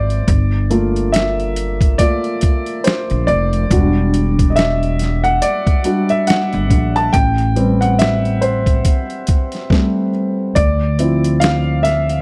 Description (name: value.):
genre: R&B, neo-soul.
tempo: 70 BPM.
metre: 4/4.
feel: swing 59% on 16ths.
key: unclear.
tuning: A4 = 440 Hz.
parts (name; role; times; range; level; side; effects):
warm upright piano; accompaniment; 0.0-12.2 s; F3 to A5; -19 LUFS; equal; none.
upright bass; bass; 0.0-12.2 s; E1 to D2; -19 LUFS; equal; none.
boom bap sampler-style drum kit; drums; 0.1-12.2 s; hi-hat, kick drum, snare drum; -19 LUFS; equal; none.
room: studio reverb.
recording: dry, close 1970s-style studio recording.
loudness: -16 LUFS.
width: mono.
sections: 0.0-10.6 A section; 10.6-12.2 B section.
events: upright piano solo 0.0-10.6, 10.6-12.2.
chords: 0.3 Gm9; 3.7 Em9; 7.1 Am9; 10.6 Dm9.